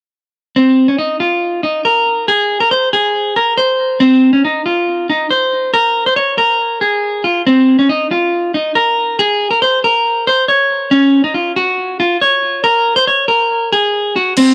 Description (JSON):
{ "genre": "hip hop, trap", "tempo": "139 BPM", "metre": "4/4", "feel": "half-time", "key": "unclear", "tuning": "A4 = 438 Hz", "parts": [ { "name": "clean electric guitar", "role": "melody", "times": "0.6-14.5 s", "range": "C4 to Db5", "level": "-13 LUFS", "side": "equal", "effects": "cassette tape" }, { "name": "trap drum kit", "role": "drums", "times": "14.4-14.5 s", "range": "crash cymbal, hi-hat", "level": "-20 LUFS", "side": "equal", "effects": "cassette tape" } ], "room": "moderate spring reverb, RT60 1.4 s", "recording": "home recording on cassette", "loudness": "-13 LUFS", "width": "mono", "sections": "0.6-14.4 A section", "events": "kick muted 14.4", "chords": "none" }